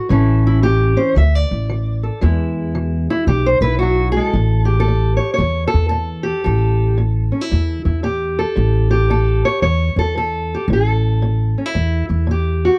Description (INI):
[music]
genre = acoustic country blues, solo or duo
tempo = 113 BPM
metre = 4/4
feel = swing 64% on 8ths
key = A mixolydian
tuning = A4 = 438 Hz
[part]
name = fingerpicked steel-string acoustic guitar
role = melody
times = 0.0-12.8 s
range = A2 to E5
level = -21 LUFS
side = equal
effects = none
[part]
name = upright bass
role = bass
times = 0.1-12.7 s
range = A1 to E2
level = -19 LUFS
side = equal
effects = none
[sound]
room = little or no reverb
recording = dry, close 1970s-style studio recording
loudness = -17 LUFS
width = mono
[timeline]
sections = 0.0-4.3 A section; 4.3-12.8 B section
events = steel-string acoustic guitar solo 0.0-4.3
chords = 0.1 A; 1.2 D5; 2.2 E; 4.3 A5